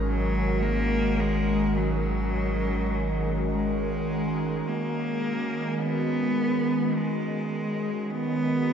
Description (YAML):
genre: ambient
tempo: 52 BPM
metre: 4/4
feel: straight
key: unclear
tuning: A4 = 443 Hz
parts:
  - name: airy breathy pad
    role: sustained chords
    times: 0.0-8.7 s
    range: Eb3 to Bb4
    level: -27 LUFS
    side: equal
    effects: chorus, phaser
  - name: warm sub bass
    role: bass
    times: 0.0-4.6 s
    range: Ab1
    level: -30 LUFS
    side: equal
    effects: none
  - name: clear cello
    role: melody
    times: 0.1-8.7 s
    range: Gb3 to Cb4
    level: -28 LUFS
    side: right 1 dB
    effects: tape echo
room: wet lush hall reverb, RT60 2.9 s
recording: dreamy mix soaked in reverb, nothing above 7.9 kHz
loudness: -24 LUFS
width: side -8 dB against mid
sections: 0.0-4.7 A section; 4.7-8.7 B section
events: none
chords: 0.0 Ab5; 4.7 Absus2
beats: | 0.05 1.21 2.36 3.51 | 4.67 5.82 6.97 8.13